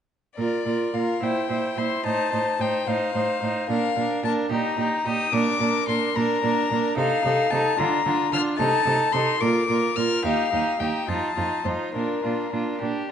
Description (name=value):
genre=quick classical-period movement for string quartet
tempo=73 BPM (dotted quarters)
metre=6/8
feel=straight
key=Bb major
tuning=A4 = 441 Hz
part: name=warm violin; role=melody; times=0.4-12.8 s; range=Bb4 to F6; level=-25 LUFS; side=left 6 dB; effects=none
part: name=rich violin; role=second line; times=0.4-13.1 s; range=F4 to C5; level=-28 LUFS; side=equal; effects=none
part: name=warm viola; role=accompaniment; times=0.4-13.1 s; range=D4 to F4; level=-28 LUFS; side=right 4 dB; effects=none
part: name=rich cello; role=bass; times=0.4-12.9 s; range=Eb2 to D3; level=-28 LUFS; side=right 4 dB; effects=none
room=wet scoring stage reverb, RT60 1.6 s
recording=nothing above 10.4 kHz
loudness=-21 LUFS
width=side -8 dB against mid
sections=0.4-13.1 A section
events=none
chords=0.4 Bb; 1.2 C7/Bb; 2.0 F7/A; 3.7 Bb; 4.5 Eb; 5.3 Bb; 7.0 F7; 7.8 Bb/D; 8.6 Adim; 9.4 Bb; 10.2 Eb; 11.1 F7; 11.9 Bb